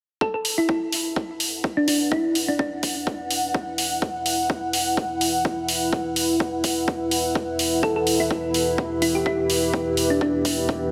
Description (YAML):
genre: bass house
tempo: 126 BPM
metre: 4/4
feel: swing 54% on 16ths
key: E minor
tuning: A4 = 440 Hz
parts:
  - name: thumb-piano-like synth pluck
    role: melody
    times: 0.2-2.7, 7.8-10.3 s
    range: D4 to A4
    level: -27 LUFS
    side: equal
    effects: lush chorus, tape echo
  - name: deep dark ambient pad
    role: sustained chords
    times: 2.5-10.9 s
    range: E3 to F#5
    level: -37 LUFS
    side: equal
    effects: chorus, built-in reverb, sidechain pumping
  - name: electronic kick drum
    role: drums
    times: 0.2-10.8 s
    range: none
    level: -28 LUFS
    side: equal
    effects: overdrive, high-pass filter on kick, small room ambience
  - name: warbly tape-like pad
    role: texture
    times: 1.4-10.9 s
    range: E4 to F#5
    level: -28 LUFS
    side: equal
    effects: chorus, built-in reverb, sidechain pumping
  - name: electronic hi-hat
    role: drums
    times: 0.4-10.6 s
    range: none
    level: -28 LUFS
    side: equal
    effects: overdrive, small room ambience
room: wet huge ambient reverb, RT60 4.7 s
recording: dreamy mix soaked in reverb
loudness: -23 LUFS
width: mono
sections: 0.2-10.9 A section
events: filter sweep on ambient pad 0.2-10.9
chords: 0.2 E5